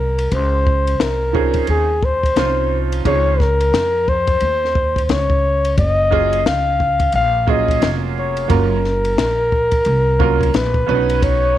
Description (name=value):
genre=hip hop, jazz-hop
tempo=88 BPM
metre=4/4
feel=swing 61% on 16ths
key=unclear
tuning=A4 = 440 Hz
part: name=breathy flugelhorn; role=melody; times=0.0-11.6 s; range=Ab4 to F5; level=-17 LUFS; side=left 1 dB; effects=none
part: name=upright bass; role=bass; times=0.0-11.6 s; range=F1 to F2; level=-20 LUFS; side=equal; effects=none
part: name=compact cocktail drum kit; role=drums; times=0.2-11.4 s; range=hi-hat, kick drum, ride cymbal, snare drum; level=-21 LUFS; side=left 2 dB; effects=none
part: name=clear upright piano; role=accompaniment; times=1.3-11.6 s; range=F3 to B4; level=-21 LUFS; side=right 14 dB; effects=none
room=light reverb, small room reverb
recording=1960s-style stereo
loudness=-14 LUFS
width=side -12 dB against mid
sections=0.0-11.6 A section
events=none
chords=0.3 Dbmaj9; 5.8 Gbmaj9; 10.9 Badd9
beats=| 0.32 1.00 1.68 2.36 | 3.05 3.73 4.41 5.09 | 5.77 6.46 7.14 7.82 | 8.50 9.18 9.86 10.55 | 11.23